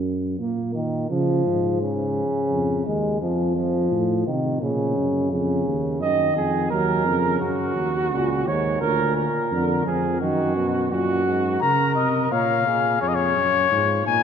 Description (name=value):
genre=classical, imitative canzona for brass ensemble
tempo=86 BPM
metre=4/4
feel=straight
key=unclear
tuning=A4 = 440 Hz
part: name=mellow tuba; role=bass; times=0.0-14.2 s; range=Db2 to Db3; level=-25 LUFS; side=right 1 dB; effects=none
part: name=warm euphonium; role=accompaniment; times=0.4-11.6 s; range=Ab2 to Bb3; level=-24 LUFS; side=equal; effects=none
part: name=mellow flugelhorn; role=second line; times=6.0-14.2 s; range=Eb4 to Eb5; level=-24 LUFS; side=right 3 dB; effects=none
part: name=mellow trumpet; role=melody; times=11.6-14.2 s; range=Db5 to Bb5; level=-20 LUFS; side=left 9 dB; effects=none
room=wet church reverb, RT60 3.8 s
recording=none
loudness=-20 LUFS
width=side -7 dB against mid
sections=0.0-14.2 A section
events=none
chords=0.4 Bbm; 1.8 Db/Ab; 3.2 F; 4.6 Bbm; 6.0 Ebm; 7.4 Gb; 8.8 Bb/D; 10.2 Ebm/Gb; 11.6 Bbm; 13.0 Db/F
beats=| 0.40 1.11 1.81 2.52 | 3.22 3.92 4.62 5.32 | 6.01 6.71 7.42 8.12 | 8.82 9.52 10.22 10.92 | 11.62 12.32 13.03 13.73